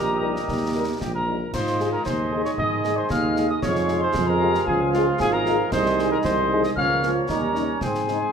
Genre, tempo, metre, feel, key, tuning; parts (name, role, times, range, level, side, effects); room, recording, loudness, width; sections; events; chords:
military-style march for wind band; 115 BPM; 2/4; straight; Ab major; A4 = 444 Hz
mellow cornet; melody; 0.0-8.3 s; F4 to F5; -27 LUFS; equal
hollow piccolo; second line; 0.0-8.3 s; F5 to F6; -29 LUFS; left 2 dB
warm euphonium; second line; 0.0-8.3 s; C4 to Ab4; -29 LUFS; right 4 dB
warm woodwind section; second line; 0.0-8.3 s; G4 to F5; -30 LUFS; left 2 dB
clear trombone section; sustained chords; 0.0-8.3 s; Eb3 to Db4; -31 LUFS; right 2 dB
mellow tuba; bass; 0.0-8.2 s; Ab1 to Ab2; -26 LUFS; right 2 dB
mellow French horn section; accompaniment; 0.2-8.2 s; G3 to Bb4; -29 LUFS; left 5 dB
concert snare drum, concert bass drum and clash cymbals; drums; 0.4-8.2 s; -32 LUFS; left 1 dB
moderate large studio reverb, RT60 0.9 s; minimal, uncompressed stereo recording; -20 LUFS; side -7 dB against mid
0.0-8.3 A section
0.0 Eb; 1.5 Ab5; 3.6 Bbm11/F; 4.7 Db; 5.7 Ab/C; 6.8 Bbm/Db; 7.3 Eb7; 7.8 Ab